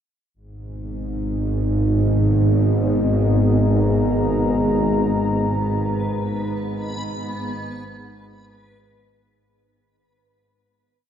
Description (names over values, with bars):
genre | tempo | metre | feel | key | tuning
dark ambient drone | 54 BPM | 4/4 | straight | G# minor | A4 = 438 Hz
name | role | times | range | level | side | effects
bowed-like drone | drone | 0.7-9.5 s | G#1 to G#2 | -20 LUFS | equal | built-in reverb
dark analog pad | sustained chords | 0.4-9.4 s | B3 to A#5 | -24 LUFS | equal | chorus
backwards swelling texture | texture | 5.2-9.4 s | B3 to B4 | -34 LUFS | left 1 dB | built-in reverb
room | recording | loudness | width
wet huge ambient reverb, RT60 7.3 s | in a vast, echoing space | -18 LUFS | side -9 dB against mid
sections
0.3-9.3 A section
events
fade-out on analog synth pad 0.3-9.3; filter sweep on synth drone 0.3-9.3; fade-out 4.8-9.3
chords
0.3 G#madd9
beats
| 0.35 1.48 2.60 3.72 | 4.83 5.94 7.06 8.20